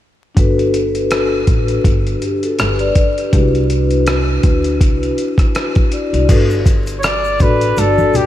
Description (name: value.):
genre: hip hop, jazz-hop.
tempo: 81 BPM.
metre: 4/4.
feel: swing 57% on 16ths.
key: G major.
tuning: A4 = 440 Hz.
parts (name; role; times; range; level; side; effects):
vibraphone with soft mallets; accompaniment; 0.3-8.3 s; D4 to D5; -17 LUFS; left 2 dB; none.
upright bass; bass; 0.4-8.1 s; G1 to D2; -18 LUFS; equal; none.
dusty soul sampler-style drum kit; drums; 0.4-8.3 s; crash cymbal, hi-hat, kick drum, rim click; -15 LUFS; equal; none.
tube shaker and congas; percussion; 6.3-8.3 s; none; -23 LUFS; right 1 dB; none.
warm flugelhorn; melody; 7.0-8.3 s; G4 to D5; -16 LUFS; right 1 dB; none.
room: moderate huge ambient reverb, RT60 4.7 s.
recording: dreamy mix soaked in reverb, vinyl crackle.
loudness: -12 LUFS.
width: side -12 dB against mid.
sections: 0.4-6.3 A section; 6.3-8.3 B section.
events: none.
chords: 0.4 Gmaj9; 3.3 Cmaj9#11; 6.3 Gmaj9.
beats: | 0.37 1.11 1.85 2.59 | 3.33 4.07 4.81 5.55 | 6.29 7.03 7.77.